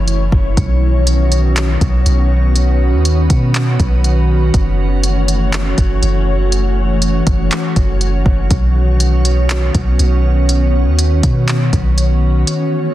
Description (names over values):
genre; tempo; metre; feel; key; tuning
hip hop, atmospheric cloud-rap; 121 BPM; 4/4; half-time; unclear; A4 = 440 Hz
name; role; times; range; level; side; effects
glassy FM pad; sustained chords; 0.0-12.9 s; D#3 to C#5; -18 LUFS; equal; ensemble chorus, built-in reverb, sidechain pumping
soft 808-style bass; bass; 0.0-12.4 s; F#1 to B2; -13 LUFS; equal; none
smooth R&B drum kit; drums; 0.1-12.6 s; handclaps, hi-hat, kick drum; -18 LUFS; equal; none
room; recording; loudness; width
little or no reverb; dense, heavily limited modern master; -11 LUFS; side -14 dB against mid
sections
0.0-12.9 A section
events
break 12.5-12.9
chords
0.0 F#m7; 0.6 Badd9; 4.5 F#m7; 8.5 Badd9